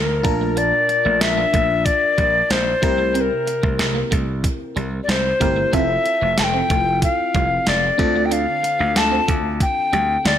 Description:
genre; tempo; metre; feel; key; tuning
1980s-style pop; 93 BPM; 4/4; straight; F major; A4 = 440 Hz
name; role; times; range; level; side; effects
breathy mellow alto recorder; melody; 0.0-10.4 s; Bb4 to A5; -19 LUFS; left 2 dB; ping-pong delay
FM electric piano; accompaniment; 0.0-10.4 s; Bb2 to A5; -26 LUFS; left 1 dB; chorus, phaser
slap bass; bass; 0.0-10.4 s; F1 to D2; -24 LUFS; right 1 dB; none
clean electric guitar; riff; 0.2-10.3 s; G3 to D4; -29 LUFS; right 6 dB; ensemble chorus
clean 12-bit digital drum machine; drums; 0.2-10.4 s; hi-hat, kick drum, snare drum; -22 LUFS; right 1 dB; overdrive, gated reverb
room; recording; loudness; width
light reverb; none; -16 LUFS; side -10 dB against mid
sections
0.0-10.4 A section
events
none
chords
0.2 Bbmaj7; 2.8 C7; 5.7 Fmaj7; 8.0 Dm7

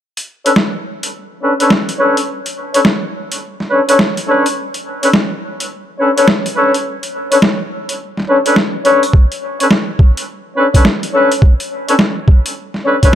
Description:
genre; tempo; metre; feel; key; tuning
glitch hop; 105 BPM; 4/4; swing 63% on 16ths; B minor; A4 = 439 Hz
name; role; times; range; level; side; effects
boom bap sampler-style drum kit; drums; 0.2-13.1 s; hi-hat, snare drum; -15 LUFS; equal; overdrive
mellow horn section; stabs; 0.5-13.1 s; C#4 to C#5; -14 LUFS; left 1 dB; sidechain pumping, low-pass filter, dub echo
electronic kick drum; drums; 9.1-13.1 s; none; -7 LUFS; equal; overdrive
room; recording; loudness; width
light reverb, digital ambience; none; -11 LUFS; side -10 dB against mid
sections
0.0-13.2 A section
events
none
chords
0.0 Bm9

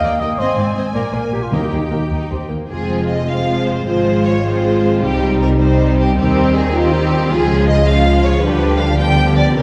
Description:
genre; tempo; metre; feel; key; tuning
classical, dramatic, fast romantic movement for symphony orchestra; 105 BPM (dotted quarters); 6/8; rubato; F minor; A4 = 440 Hz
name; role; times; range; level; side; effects
rich symphonic violin section; melody; 0.0-9.6 s; G4 to Ab5; -24 LUFS; equal; none
dark cor anglais; second line; 0.0-2.1 s; Eb4 to F5; -24 LUFS; equal; none
warm symphonic violin section; second line; 0.0-9.6 s; Bb3 to Eb5; -27 LUFS; equal; none
rich symphonic viola section; accompaniment; 0.0-9.6 s; E3 to G4; -23 LUFS; equal; none
warm chamber double bass section; bass; 0.0-9.6 s; F1 to Eb2; -22 LUFS; equal; none
warm symphonic cello section; bass; 0.0-9.6 s; Eb2 to Eb3; -23 LUFS; equal; none
timpani; percussion; 1.5-2.1 s; Eb3; -26 LUFS; equal; none
mellow French horn section; sustained chords; 3.3-9.6 s; B3 to F4; -23 LUFS; equal; none
room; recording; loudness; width
wet scoring stage reverb, RT60 1.7 s; heard from further back in the room; -16 LUFS; mono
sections
0.0-2.7 A section; 2.7-9.6 B section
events
none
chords
0.4 Ab; 0.9 Bb7; 1.5 Eb; 2.7 Fm; 3.9 Fm/Ab; 5.0 Cm; 6.2 Cm/Eb; 7.3 Db; 8.4 G7/D

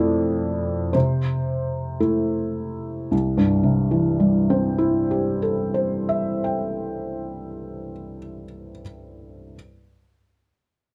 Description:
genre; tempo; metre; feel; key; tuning
neoclassical minimalist piano; 57 BPM; 4/4; rubato; C major; A4 = 441 Hz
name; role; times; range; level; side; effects
felt-muted upright piano; solo; 0.0-9.6 s; C2 to G5; -23 LUFS; equal; none
room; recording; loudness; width
little or no reverb; close, detailed microphones; -22 LUFS; mono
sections
0.0-3.1 A section; 3.1-7.4 B section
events
slowing down 0.0-3.1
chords
0.0 Fmaj7; 0.9 C6

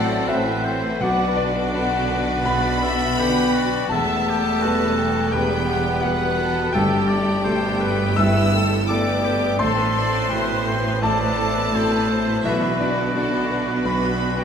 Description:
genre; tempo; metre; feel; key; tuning
cinematic; 84 BPM; 4/4; rubato; unclear; A4 = 442 Hz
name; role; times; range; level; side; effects
clear symphonic violin section; melody; 0.0-14.4 s; D5 to E6; -29 LUFS; left 4 dB; none
clear oboe; second line; 0.0-14.4 s; F#4 to D5; -28 LUFS; right 1 dB; none
dark clarinet; second line; 0.0-14.4 s; D4 to E5; -28 LUFS; left 1 dB; none
mellow hollow wooden flute; second line; 0.0-14.4 s; F#5 to B5; -29 LUFS; left 2 dB; none
rich symphonic violin section; second line; 0.0-14.4 s; G4 to F#5; -29 LUFS; left 4 dB; none
bright symphonic viola section; accompaniment; 0.0-14.4 s; G3 to B4; -30 LUFS; right 1 dB; none
clear concert grand piano; accompaniment; 0.0-14.4 s; E1 to E6; -24 LUFS; equal; none
mellow French horn section; sustained chords; 0.0-14.4 s; D3 to F#4; -28 LUFS; left 2 dB; none
clear symphonic double bass section; bass; 0.0-14.4 s; E1 to B1; -29 LUFS; right 3 dB; none
warm symphonic cello section; bass; 0.0-14.4 s; E2 to B2; -28 LUFS; right 3 dB; none
timpani; percussion; 6.7-7.8 s; G2; -30 LUFS; equal; none
room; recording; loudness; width
wet recital hall reverb, RT60 1.6 s; minimal, uncompressed stereo recording; -18 LUFS; side -7 dB against mid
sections
0.0-14.4 A section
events
none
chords
0.0 Amadd9; 1.0 Bm; 3.9 Emadd9; 6.7 Gadd9; 9.6 Amadd9; 12.4 Bm

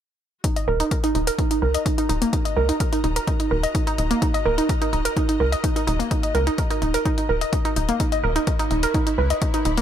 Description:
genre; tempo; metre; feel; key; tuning
melodic techno; 127 BPM; 4/4; straight; Eb phrygian; A4 = 441 Hz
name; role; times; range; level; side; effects
warbly dusty pluck; arpeggios; 0.4-9.8 s; Bb3 to Eb5; -22 LUFS; right 2 dB; chorus, sidechain pumping, tape echo
electronic hi-hat; drums; 0.4-9.8 s; none; -31 LUFS; left 7 dB; none
electronic kick drum; drums; 0.4-9.5 s; none; -24 LUFS; left 1 dB; none
rich studio string section; texture; 0.4-9.8 s; Fb4 to Cb6; -37 LUFS; left 3 dB; sidechain pumping
tight sequencer bass; bass; 0.7-9.8 s; Eb1 to Db2; -24 LUFS; left 1 dB; sidechain pumping
room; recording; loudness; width
light reverb; none; -19 LUFS; side -9 dB against mid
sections
0.4-9.8 A section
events
fade-in on string section 0.4-9.8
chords
0.4 Ebm; 8.0 Dbm7/Eb

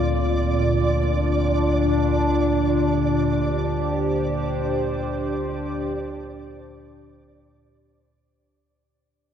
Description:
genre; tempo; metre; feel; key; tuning
dark ambient drone; free time; none; none; unclear; A4 = 438 Hz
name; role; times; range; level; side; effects
dark analog pad; sustained chords; 0.0-8.4 s; Bb2 to C5; -23 LUFS; left 1 dB; chorus, phaser, shimmer reverb
deep rumbling drone; drone; 0.0-8.5 s; D2 to D3; -25 LUFS; equal; built-in reverb
flickering grainy texture; texture; 0.0-8.4 s; D5; -28 LUFS; right 2 dB; built-in reverb, shimmer reverb
room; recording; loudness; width
wet cathedral reverb, RT60 6.8 s; dark, warm production; -20 LUFS; side -9 dB against mid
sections
0.0-8.4 A section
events
fade-out 2.2-8.4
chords
0.0 Bb

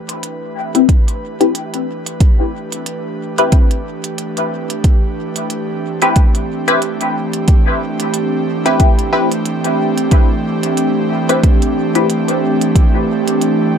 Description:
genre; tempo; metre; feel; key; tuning
ambient dub; 91 BPM; 4/4; swing 57% on 16ths; A minor; A4 = 440 Hz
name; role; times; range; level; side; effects
airy breathy pad; sustained chords; 0.0-13.8 s; E3 to B4; -18 LUFS; right 2 dB; chorus
electronic hi-hat; drums; 0.1-13.6 s; none; -25 LUFS; right 5 dB; overdrive
filtered dub chord stab; stabs; 0.7-12.1 s; C4 to B4; -17 LUFS; left 3 dB; phaser, wide subtle chorus, dub echo
electronic kick drum; drums; 0.9-12.9 s; none; -11 LUFS; equal; none
room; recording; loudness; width
light reverb; echo-heavy mix; -13 LUFS; side -8 dB against mid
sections
0.0-13.8 A section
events
fade-in on analog synth pad 0.0-13.8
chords
0.0 Am9

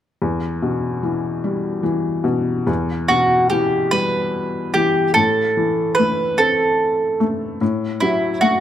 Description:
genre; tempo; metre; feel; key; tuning
children's music, lullaby; 49 BPM (dotted quarters); 6/8; rubato; E minor; A4 = 440 Hz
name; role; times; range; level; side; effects
felt-muted upright piano; accompaniment; 0.2-8.6 s; E2 to C4; -20 LUFS; left 2 dB; none
mandolin; melody; 3.1-8.6 s; E4 to B4; -17 LUFS; right 2 dB; none
room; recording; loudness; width
light reverb; close, detailed microphones; -16 LUFS; side -10 dB against mid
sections
0.2-2.7 A section; 2.7-8.6 B section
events
none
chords
0.2 Em; 5.2 Am; 7.6 F#m/A

